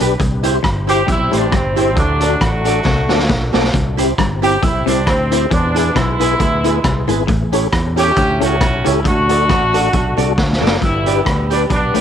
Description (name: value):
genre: ska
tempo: 136 BPM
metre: 4/4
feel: swing 55% on 8ths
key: G major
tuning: A4 = 440 Hz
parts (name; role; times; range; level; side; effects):
- archtop guitar, miked and amplified; accompaniment; 0.0-12.0 s; D4 to D5; -22 LUFS; right 12 dB; none
- twangy electric guitar; riff; 0.0-12.0 s; F#2 to E3; -25 LUFS; left 10 dB; none
- mellow tonewheel organ; stabs; 0.0-12.0 s; B3 to C5; -22 LUFS; left 11 dB; chorus vibrato, fast rotary speaker, tape echo
- fingered electric bass; bass; 0.0-12.0 s; F#1 to E2; -19 LUFS; equal; none
- raw garage drum kit; drums; 0.0-12.0 s; hi-hat, kick drum, rim click, snare drum; -19 LUFS; equal; none
- warm horn section; melody; 0.9-12.0 s; F#3 to G4; -18 LUFS; equal; none
room: moderate spring reverb, RT60 2.2 s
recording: 1960s-style stereo with parts hard left and right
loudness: -13 LUFS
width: side -9 dB against mid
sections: 0.0-10.8 A section; 10.8-12.0 B section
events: drum fill 2.9-3.7, 10.4-10.8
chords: 0.2 C; 2.0 D; 3.7 C; 5.5 E; 7.3 A7; 9.1 D; 10.8 G